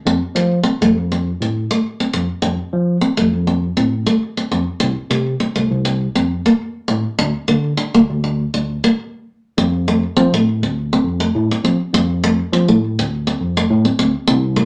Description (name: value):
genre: highlife guitar band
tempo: 101 BPM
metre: 4/4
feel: swing 55% on 16ths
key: F major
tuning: A4 = 440 Hz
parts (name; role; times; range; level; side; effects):
- picked steel-string acoustic guitar; accompaniment; 0.1-14.7 s; A3 to D4; -19 LUFS; equal; none
- overdriven tine electric piano; bass; 0.1-14.7 s; C2 to F3; -21 LUFS; equal; phaser
room: moderate club reverb, RT60 0.6 s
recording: none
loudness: -17 LUFS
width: mono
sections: 0.0-9.6 A section; 9.6-14.7 B section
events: stop 9.0-9.6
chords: 0.1 F; 4.8 N.C.; 7.2 Bb/D; 9.6 F